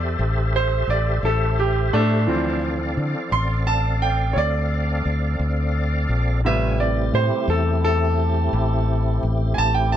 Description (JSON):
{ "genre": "slow blues", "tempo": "58 BPM (dotted quarters)", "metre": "12/8", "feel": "straight", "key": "A minor", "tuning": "A4 = 441 Hz", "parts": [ { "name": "bright grand piano", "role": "accompaniment", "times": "0.0-10.0 s", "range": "C3 to C6", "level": "-23 LUFS", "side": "right 2 dB", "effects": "none" }, { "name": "tonewheel organ", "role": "sustained chords", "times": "0.0-10.0 s", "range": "A3 to G#5", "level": "-27 LUFS", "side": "equal", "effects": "slow rotary speaker, overdrive, chorus vibrato" }, { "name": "fingered electric bass", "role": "bass", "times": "0.0-10.0 s", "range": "A1 to D3", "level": "-21 LUFS", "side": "left 1 dB", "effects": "none" } ], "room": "light reverb", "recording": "none", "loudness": "-18 LUFS", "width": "side -10 dB against mid", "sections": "0.0-10.0 A section", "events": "grand piano solo 0.0-10.0", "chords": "0.0 Am7; 2.3 Dm7; 6.5 Am7", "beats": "0.20 1.24 | 2.29 3.33 4.37 5.41 | 6.45 7.49 8.53 9.57" }